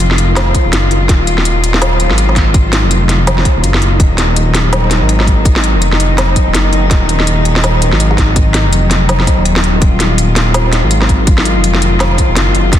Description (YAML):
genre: half-time drum and bass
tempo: 165 BPM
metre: 4/4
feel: swing 59% on 16ths, half-time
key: Eb minor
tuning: A4 = 440 Hz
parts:
  - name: warm chamber cello section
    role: sustained chords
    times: 0.0-12.8 s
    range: Eb3 to F4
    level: -17 LUFS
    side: left 3 dB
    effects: sidechain pumping
  - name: dark detuned saw bass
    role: bass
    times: 0.0-12.8 s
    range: Eb1 to Ab1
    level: -12 LUFS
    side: equal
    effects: none
  - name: organic electronic drum kit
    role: drums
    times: 0.0-12.8 s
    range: hi-hat, snare drum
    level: -14 LUFS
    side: equal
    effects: soft clipping on snare
  - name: electronic kick drum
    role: drums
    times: 0.5-12.8 s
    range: none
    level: -11 LUFS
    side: equal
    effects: none
room: light reverb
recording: dense, heavily limited modern master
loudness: -9 LUFS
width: side -11 dB against mid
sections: 0.0-12.8 A section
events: none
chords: 0.0 Ebmadd9